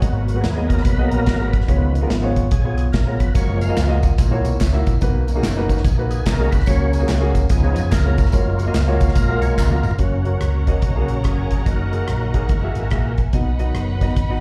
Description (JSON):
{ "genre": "uptempo gospel", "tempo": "144 BPM", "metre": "4/4", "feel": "swing 63% on 8ths", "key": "F# major", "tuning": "A4 = 440 Hz", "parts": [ { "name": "warm upright piano", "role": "accompaniment", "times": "0.0-14.4 s", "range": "G#2 to F#5", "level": "-28 LUFS", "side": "equal", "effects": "plate reverb, slapback echo" }, { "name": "tonewheel organ", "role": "sustained chords", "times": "0.0-14.1 s", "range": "C#3 to E#5", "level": "-28 LUFS", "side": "equal", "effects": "slow rotary speaker, overdrive, chorus vibrato" }, { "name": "fingered electric bass", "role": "bass", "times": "0.0-14.4 s", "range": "E#1 to E#2", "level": "-22 LUFS", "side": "equal", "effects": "none" }, { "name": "modern studio drum kit", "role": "drums", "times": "0.0-14.3 s", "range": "hi-hat, kick drum, rim click, snare drum, toms", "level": "-22 LUFS", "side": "equal", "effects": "none" }, { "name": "tambourine and handclaps", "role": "percussion", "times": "3.3-9.9 s", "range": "none", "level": "-38 LUFS", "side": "equal", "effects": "none" }, { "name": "warm studio string section", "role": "sustained chords", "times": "10.0-14.4 s", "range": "A#4 to B5", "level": "-36 LUFS", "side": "equal", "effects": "plate reverb" } ], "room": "light reverb", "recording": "live gig heard through the venue's PA, recital hall reverb", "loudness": "-18 LUFS", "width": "mono", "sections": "0.0-10.0 A section; 10.0-14.4 B section", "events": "tonewheel organ solo 0.0-10.0, 10.0-14.4; drum fill 9.6-10.0", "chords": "0.0 G#m7; 1.7 C#7; 3.4 F#maj7; 4.2 F#7/A#; 5.0 Bmaj7; 6.7 F#/C#; 7.5 C#7; 8.3 F#maj7; 11.7 D#m/F#; 12.5 F#9; 13.3 B", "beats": "| 0.02 0.44 0.86 1.27 | 1.69 2.10 2.52 2.94 | 3.35 3.77 4.18 4.60 | 5.01 5.43 5.84 6.26 | 6.67 7.09 7.50 7.92 | 8.34 8.75 9.17 9.58 | 10.00 10.41 10.83 11.25 | 11.66 12.08 12.50 12.91 | 13.33 13.75 14.16" }